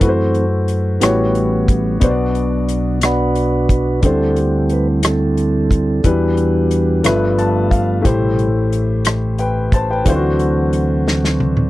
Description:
slow gospel; 60 BPM (dotted quarters); 6/8; straight; A4 = 440 Hz
warm grand piano; accompaniment; 0.0-11.7 s; G2 to A5; -18 LUFS; left 3 dB
percussive tonewheel organ; sustained chords; 0.0-11.7 s; B2 to B4; -19 LUFS; right 3 dB; stopped rotary speaker
fingered electric bass; bass; 0.0-11.7 s; G1 to F#2; -19 LUFS; equal
natural country drum kit; drums; 0.0-11.7 s; hi-hat, kick drum, rim click, snare drum, toms; -16 LUFS; equal
little or no reverb; dry, close 1970s-style studio recording; -14 LUFS; side -16 dB against mid
0.0-11.7 A section
tonewheel organ solo 0.0-11.7; grand piano fill 7.0-8.1; drum fill 11.1-11.7
0.0 F#m7b5; 1.0 A13; 2.0 Bm; 4.0 D7sus4; 6.0 Em7; 7.0 G13; 8.1 Am7; 10.1 D7

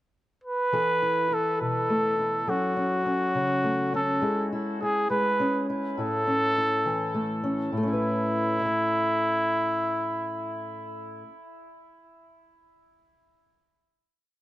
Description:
indie folk with a building arrangement; 69 BPM (dotted quarters); 6/8; straight; A major; A4 = 440 Hz
clear trumpet; melody; 0.4-10.9 s; E4 to B4; -26 LUFS; equal; tape echo
fingerpicked old ladder-braced acoustic guitar; accompaniment; 0.7-11.9 s; A2 to A5; -29 LUFS; left 1 dB
light reverb; echo-heavy mix; -24 LUFS; side -15 dB against mid
0.0-0.7 pickup bar; 0.7-7.7 breakdown; 7.7-11.2 final chord
0.0 N.C.; 0.7 Esus4; 2.5 F#m; 4.2 C#m/G#; 6.0 A; 7.7 Aadd9

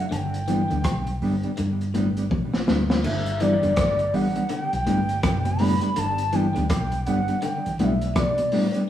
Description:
roots reggae; 82 BPM; 4/4; swing 61% on 16ths; A4 = 440 Hz
reedy bansuri; melody; 0.0-8.8 s; D5 to B5; -26 LUFS; equal
mellow electric guitar; accompaniment; 0.0-8.8 s; G3 to G4; -26 LUFS; right 1 dB; tape echo
electric guitar at the edge of break-up; arpeggios; 0.1-8.7 s; A2 to E3; -29 LUFS; left 5 dB; tremolo
vintage muted fingered electric bass; bass; 0.1-8.2 s; F#1 to G2; -27 LUFS; equal
crunchy breakbeat drum kit; drums; 0.1-8.9 s; crash cymbal, hi-hat, kick drum, rim click, snare drum; -27 LUFS; equal
wet stone room reverb, RT60 1.0 s; band playing live in one room, studio reverb; -21 LUFS; side -11 dB against mid
0.0-3.0 A section; 3.0-8.9 B section
drum fill 2.3-3.0
0.1 G

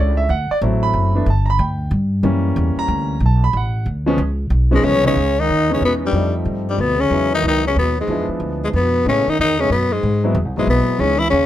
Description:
jazz; 185 BPM; 3/4; swing 64% on 8ths; C# minor from 5.2 s; A4 = 440 Hz
warm concert grand piano; accompaniment; 0.0-11.2 s; C#2 to B5; -21 LUFS; equal
upright bass; bass; 0.0-11.5 s; F#1 to A2; -19 LUFS; equal
growling tenor saxophone; melody; 4.7-11.5 s; G3 to E4; -18 LUFS; left 4 dB; plate reverb
breathy trombone; second line; 4.7-11.5 s; G2 to E3; -22 LUFS; right 3 dB
light reverb; -15 LUFS; side -12 dB against mid
0.0-5.2 A section; 5.2-11.5 B section
0.3 D7; 1.3 G5; 2.2 F#7b9; 3.2 Bm7; 4.2 C#7; 5.2 C#m9; 6.1 F9; 7.1 Emaj7; 8.1 E7b9; 9.1 Amaj9; 10.0 G#7alt

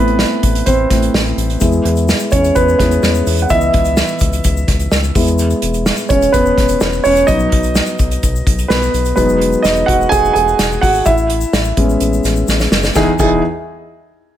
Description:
piano-driven pop; 127 BPM; 4/4; straight; E major; A4 = 442 Hz
dark grand piano; accompaniment; 0.0-13.4 s; E2 to G#5; -14 LUFS; right 1 dB
round analog bass; bass; 0.0-13.4 s; E1 to E2; -18 LUFS; left 1 dB
unplugged drum kit; drums; 0.1-13.3 s; crash cymbal, hi-hat, kick drum, snare drum; -17 LUFS; equal
egg shaker; percussion; 1.6-13.4 s; -30 LUFS; left 12 dB
light reverb, studio reverb; -11 LUFS; side -11 dB against mid
0.0-9.2 A section; 9.2-13.0 B section; 13.0-14.4 C section
grand piano solo 0.0-9.2, 9.2-13.0; drum fill 12.5-13.0
0.0 Am; 1.6 E; 3.5 C#m7; 5.2 E; 7.3 B; 9.2 Emaj7; 11.1 Amaj7; 13.0 Emaj7

